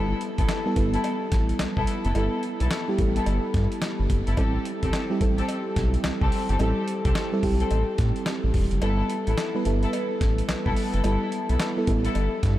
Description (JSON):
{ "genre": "R&B, new jack swing", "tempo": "108 BPM", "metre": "4/4", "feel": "swing 63% on 16ths", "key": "G major", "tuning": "A4 = 440 Hz", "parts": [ { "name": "mellow FM electric piano", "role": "accompaniment", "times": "0.0-12.6 s", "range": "G3 to B4", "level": "-27 LUFS", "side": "right 1 dB", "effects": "chorus" }, { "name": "muted studio string section", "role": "stabs", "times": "0.0-12.2 s", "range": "B3 to A4", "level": "-32 LUFS", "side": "left 3 dB", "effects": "tape echo" }, { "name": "round analog bass", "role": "bass", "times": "0.0-12.6 s", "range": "E1 to A2", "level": "-25 LUFS", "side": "equal", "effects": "none" }, { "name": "dusty soul sampler-style drum kit", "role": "drums", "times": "0.2-12.6 s", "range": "handclaps, hi-hat, kick drum, snare drum", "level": "-28 LUFS", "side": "equal", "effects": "none" }, { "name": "cowbell", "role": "percussion", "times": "0.5-12.3 s", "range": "none", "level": "-42 LUFS", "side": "left 4 dB", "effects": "none" } ], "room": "moderate huge ambient reverb, RT60 8.3 s", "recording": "dreamy mix soaked in reverb", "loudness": "-22 LUFS", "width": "side -14 dB against mid", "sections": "0.0-12.6 A section", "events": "kick muted 8.8-9.9", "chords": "0.0 G69; 4.4 Am7; 8.8 G69" }